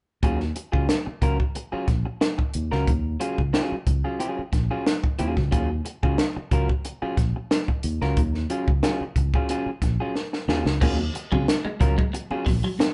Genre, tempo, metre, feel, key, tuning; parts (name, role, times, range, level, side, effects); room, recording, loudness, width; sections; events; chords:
funk; 91 BPM; 4/4; straight; Eb minor; A4 = 440 Hz
electric guitar at the edge of break-up; accompaniment; 0.2-12.8 s; Gb3 to Bb4; -31 LUFS; equal
fingered electric bass; bass; 0.2-12.6 s; Bb1 to Eb2; -29 LUFS; equal
compact cocktail drum kit; drums; 0.2-12.9 s; crash cymbal, hi-hat, kick drum, snare drum; -26 LUFS; equal
clean electric guitar; riff; 10.8-12.8 s; Gb3 to Bb3; -33 LUFS; equal
congas; percussion; 10.8-12.9 s; -35 LUFS; equal
moderate large studio reverb, RT60 0.9 s; band playing live in one room, nothing above 11.0 kHz; -24 LUFS; mono
0.2-10.8 A section; 10.8-12.9 B section
drum fill 10.2-10.8
0.2 Ebm11